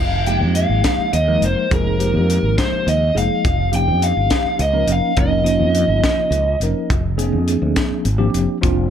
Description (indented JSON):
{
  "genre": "electric jazz fusion",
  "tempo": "69 BPM (dotted quarters)",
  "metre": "6/8",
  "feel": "straight",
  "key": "F minor",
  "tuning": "A4 = 443 Hz",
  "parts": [
    { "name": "lead guitar through a small cranked amp", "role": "melody", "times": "0.0-6.6 s", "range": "Bb4 to G5", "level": "-20 LUFS", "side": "equal", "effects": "overdrive, tape echo" },
    { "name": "fretless electric bass", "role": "bass", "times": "0.0-8.9 s", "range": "F1 to F2", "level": "-19 LUFS", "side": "equal", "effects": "none" },
    { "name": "tine electric piano", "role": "accompaniment", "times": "0.3-8.9 s", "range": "F3 to Bb4", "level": "-21 LUFS", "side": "equal", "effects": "medium stereo tremolo, phaser" },
    { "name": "crisp fusion drum kit", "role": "drums", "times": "0.3-8.8 s", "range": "hi-hat, kick drum, snare drum", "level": "-21 LUFS", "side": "equal", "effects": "none" }
  ],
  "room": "light reverb",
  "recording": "none",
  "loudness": "-15 LUFS",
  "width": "side -9 dB against mid",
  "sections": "0.0-8.9 A section",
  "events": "none",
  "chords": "0.0 Fm11; 3.4 Eb9/F; 6.9 Bb9/F"
}